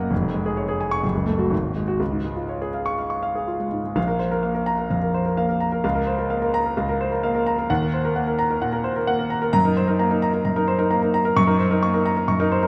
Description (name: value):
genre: classical, virtuoso piano study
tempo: 129 BPM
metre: 4/4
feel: rubato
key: Bb minor from 4.0 s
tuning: A4 = 440 Hz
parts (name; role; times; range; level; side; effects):
- warm concert grand piano; solo; 0.0-12.7 s; F1 to Eb6; -22 LUFS; equal; none
room: moderate scoring stage reverb, RT60 1.8 s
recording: none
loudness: -22 LUFS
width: mono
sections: 0.0-4.0 A section; 4.0-12.7 B section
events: none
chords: 0.1 Db/F; 1.0 Gbm; 1.5 Ab5; 2.0 Db; 4.0 Bb5; 5.8 Bbm/Db; 7.7 Ebm; 9.5 Ebm/Gb; 11.4 Ebm7/Gb